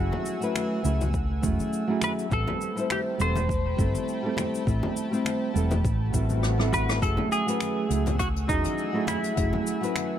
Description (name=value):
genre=sunset chillout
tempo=102 BPM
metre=4/4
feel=swing 55% on 16ths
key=unclear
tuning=A4 = 435 Hz
part: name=semi-hollow electric guitar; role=melody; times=0.0-10.2 s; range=D#4 to C5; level=-30 LUFS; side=left 1 dB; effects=analog chorus, digital delay
part: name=nylon-string guitar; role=accompaniment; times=0.0-10.2 s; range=E3 to C5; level=-29 LUFS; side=right 1 dB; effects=auto-pan, low-pass filter, digital delay
part: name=airy breathy pad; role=sustained chords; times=0.0-10.2 s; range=A3 to E6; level=-34 LUFS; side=right 3 dB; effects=chorus
part: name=hollow-body short-scale fingered electric bass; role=bass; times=0.0-9.5 s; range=E1 to C#2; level=-26 LUFS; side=equal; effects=none
part: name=congas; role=percussion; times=0.1-10.1 s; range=none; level=-36 LUFS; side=left 4 dB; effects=none
part: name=soft brush drum kit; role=drums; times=0.3-10.1 s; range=cabasa, finger snaps, hi-hat, rim click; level=-34 LUFS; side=left 1 dB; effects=none
part: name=electronic kick drum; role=drums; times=1.1-9.5 s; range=none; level=-30 LUFS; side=equal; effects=overdrive
part: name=swell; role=sound effects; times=6.0-7.0 s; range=none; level=-37 LUFS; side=equal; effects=none
room=light reverb, small room ambience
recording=none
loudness=-24 LUFS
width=side -10 dB against mid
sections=0.0-10.2 A section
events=swell 6.0-7.0; drum fill 6.4-7.0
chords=0.0 F#m9; 2.3 Am9; 7.0 F#m9